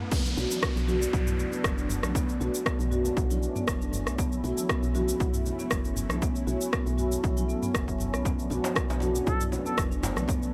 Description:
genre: afro house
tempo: 118 BPM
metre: 4/4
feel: straight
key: B minor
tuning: A4 = 440 Hz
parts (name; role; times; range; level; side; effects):
- marimba with soft mallets; arpeggios; 0.0-10.4 s; F#3 to F#4; -34 LUFS; equal; sidechain pumping, tape echo
- house drum kit; drums; 0.0-10.5 s; cabasa, crash cymbal, rim click, toms; -35 LUFS; equal; studio reverb
- riser and downlifter; sound effects; 0.0-4.2 s; none; -42 LUFS; equal; none
- warm analog pad; sustained chords; 0.1-10.5 s; F#3 to E4; -40 LUFS; equal; chorus, sidechain pumping
- electronic kick drum; drums; 0.1-10.4 s; none; -32 LUFS; equal; studio reverb
- congas; percussion; 0.1-10.5 s; none; -41 LUFS; equal; none
- woody FM bass; bass; 0.4-10.5 s; F#1 to B1; -36 LUFS; equal; sidechain pumping
- djembe; percussion; 8.3-10.4 s; none; -39 LUFS; equal; none
- trumpet with plunger mute; melody; 9.3-9.8 s; A4; -37 LUFS; equal; tape echo
room: light reverb, small room ambience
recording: none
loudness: -28 LUFS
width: mono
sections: 0.1-10.5 A section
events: drop 0.1-10.5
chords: 0.1 Bm9; 4.2 F#m7; 8.3 Bm9

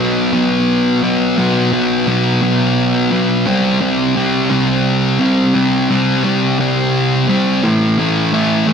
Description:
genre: rock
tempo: 58 BPM (dotted quarters)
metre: 6/8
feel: straight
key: unclear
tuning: A4 = 439 Hz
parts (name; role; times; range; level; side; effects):
- thick fuzz guitar; solo; 0.0-8.7 s; A2 to C4; -12 LUFS; equal; distortion, analog delay
room: moderate recital hall reverb, RT60 1.7 s, digital ambience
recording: dark, warm production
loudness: -12 LUFS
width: side -6 dB against mid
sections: 0.0-8.7 A section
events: build-up 0.0-8.7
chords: 0.0 B5; 3.5 C5; 7.6 A5

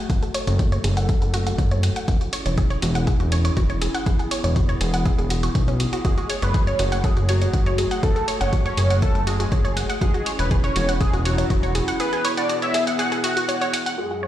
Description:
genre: melodic techno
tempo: 121 BPM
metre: 4/4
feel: straight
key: F# minor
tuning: A4 = 440 Hz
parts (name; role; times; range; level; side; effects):
- dark analog pad; sustained chords; 0.0-14.3 s; F#3 to A4; -30 LUFS; equal; chorus, vintage 12-bit sampler grit, sidechain pumping
- wide unison pluck; arpeggios; 0.0-14.3 s; C#4 to F#5; -28 LUFS; right 1 dB; cassette tape, sidechain pumping, ping-pong delay
- fat analog bass; bass; 0.1-11.8 s; E1 to B1; -22 LUFS; equal; sidechain pumping
- electronic hi-hat; drums; 0.1-14.0 s; none; -31 LUFS; equal; sidechain pumping on hats, low-pass filter on hats, low-pass filter on room
- electronic kick drum; drums; 0.1-11.6 s; none; -22 LUFS; equal; none
- fat analog lead; melody; 6.0-14.3 s; F#4 to F#5; -25 LUFS; equal; ensemble chorus, sidechain pumping, dub echo
- analog drone; drone; 14.0-14.3 s; F#2 to F#3; -36 LUFS; left 1 dB; chorus, phaser, sidechain pumping
room: light reverb, digital ambience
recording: played on a big sound system in a bare room, stone room reverb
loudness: -19 LUFS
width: side -12 dB against mid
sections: 0.0-14.0 A section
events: filter sweep on synth arpeggio sound 0.0-14.0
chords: 0.0 F#m; 2.1 C#m/E; 4.1 E; 6.0 F#madd9; 10.0 C#m/E; 12.0 E

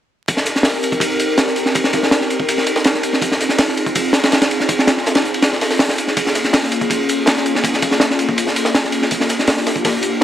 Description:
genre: drum and bass, jungle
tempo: 163 BPM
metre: 4/4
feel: straight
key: C minor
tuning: A4 = 440 Hz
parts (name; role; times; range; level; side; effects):
- airy breathy pad; sustained chords; 0.3-10.2 s; Bb3 to Bb4; -19 LUFS; equal; chorus
- crunchy breakbeat drum kit; drums; 0.3-10.2 s; kick drum, ride cymbal, snare drum; -16 LUFS; equal; high-pass filter on kick, high-pass filter on cymbals, high-pass filter on snare, high-pass filter on room
- crunchy breakbeat drum kit; drums; 0.3-10.2 s; hi-hat, snare drum; -23 LUFS; left 1 dB; high-pass filter on hats, high-pass filter on snare, high-pass filter on room
room: moderate digital room reverb, RT60 1.3 s, small room ambience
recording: vinyl crackle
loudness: -14 LUFS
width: side -11 dB against mid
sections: 0.3-10.2 A section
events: none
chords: 0.3 Cm7; 3.2 Fm7; 6.2 Bbm7; 9.1 Gm7

